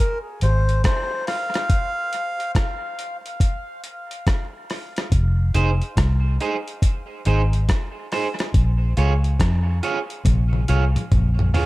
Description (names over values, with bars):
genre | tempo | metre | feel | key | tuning
dub reggae | 70 BPM | 4/4 | swing 64% on 16ths | F minor | A4 = 440 Hz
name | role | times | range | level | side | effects
melodica | melody | 0.0-2.5 s | Bb4 to F5 | -28 LUFS | left 1 dB | dub echo
vintage muted fingered electric bass | bass | 0.4-11.5 s | F1 to F2 | -18 LUFS | equal | none
dusty soul sampler-style drum kit | drums | 0.4-11.7 s | hi-hat, kick drum, rim click, toms | -21 LUFS | equal | overdrive
electric guitar at the edge of break-up | accompaniment | 5.5-11.7 s | Eb4 to Db5 | -27 LUFS | right 4 dB | dub echo
room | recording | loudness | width
little or no reverb | none | -19 LUFS | side -19 dB against mid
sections
0.0-11.7 A section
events
break 0.0-5.1; drum fill 10.3-11.7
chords
0.0 Fm; 1.7 N.C.; 5.1 Fm7; 8.5 Bbm7